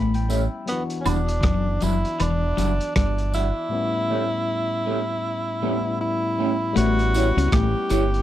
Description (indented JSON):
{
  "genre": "lovers rock reggae",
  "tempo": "79 BPM",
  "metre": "4/4",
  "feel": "swing 60% on 16ths",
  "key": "unclear",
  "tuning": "A4 = 440 Hz",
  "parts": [
    { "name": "barky tine electric piano", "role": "accompaniment", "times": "0.0-8.2 s", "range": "A2 to B5", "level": "-29 LUFS", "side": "left 4 dB", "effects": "slapback echo" },
    { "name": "clean electric guitar", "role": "riff", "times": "0.0-8.1 s", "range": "E3 to C#4", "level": "-26 LUFS", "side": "left 7 dB", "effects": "spring reverb, slapback echo" },
    { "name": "deep dub fingered electric bass", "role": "bass", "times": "0.0-8.2 s", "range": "E1 to C#2", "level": "-23 LUFS", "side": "equal", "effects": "none" },
    { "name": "crunchy breakbeat drum kit", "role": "drums", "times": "0.1-8.2 s", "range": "hi-hat, kick drum, rim click", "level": "-26 LUFS", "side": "equal", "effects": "none" },
    { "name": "electric guitar through a small old amp", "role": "stabs", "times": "0.3-8.0 s", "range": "G3 to C#5", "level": "-26 LUFS", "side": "right 5 dB", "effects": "phaser" },
    { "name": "tambourine and woodblock", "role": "percussion", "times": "0.3-8.1 s", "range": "none", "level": "-32 LUFS", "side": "right 6 dB", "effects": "none" },
    { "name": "breathy tenor saxophone", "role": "melody", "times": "0.7-8.2 s", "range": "B3 to G4", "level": "-26 LUFS", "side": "equal", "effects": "tape echo" }
  ],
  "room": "light reverb",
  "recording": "dry, close 1970s-style studio recording",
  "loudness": "-20 LUFS",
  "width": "side -12 dB against mid",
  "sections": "0.0-6.8 A section; 6.8-8.2 B section",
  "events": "tine electric piano fill 0.0-0.7",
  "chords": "0.0 A7; 0.7 Em9; 3.7 A7",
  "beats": "| 0.68 1.44 2.20 2.96 | 3.72 4.48 5.24 6.00 | 6.77 7.53"
}